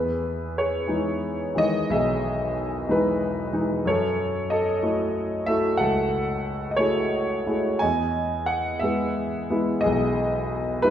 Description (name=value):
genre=classical, lyrical solo piano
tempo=60 BPM (dotted quarters)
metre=6/8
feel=rubato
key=E major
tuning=A4 = 441 Hz
part: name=clear concert grand piano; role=solo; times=0.0-10.9 s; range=B1 to G#5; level=-22 LUFS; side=equal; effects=none
room=wet recital hall reverb, RT60 1.6 s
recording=recorded in a church or concert hall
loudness=-22 LUFS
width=side -10 dB against mid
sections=0.0-10.9 A section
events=none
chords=0.0 Emaj7; 3.9 F#m9; 7.8 Emaj7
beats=0.87 | 1.88 2.88 | 3.85 4.83 | 5.80 6.80 | 7.82 8.84 | 9.85 10.85